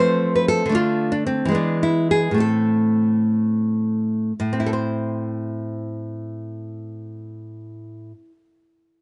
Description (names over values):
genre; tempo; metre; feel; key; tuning
classical, baroque-style dance for nylon-string guitar; 56-79 BPM (dotted quarters); 6/8; rubato; A minor; A4 = 440 Hz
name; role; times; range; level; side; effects
nylon-string guitar; solo; 0.0-8.4 s; A2 to C5; -22 LUFS; equal; none
room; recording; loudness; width
light reverb; nothing above 10.8 kHz; -21 LUFS; mono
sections
0.0-4.4 A section; 4.4-8.6 B section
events
slowing down 0.0-4.4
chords
0.0 F; 0.8 Dm; 1.5 E; 2.4 Am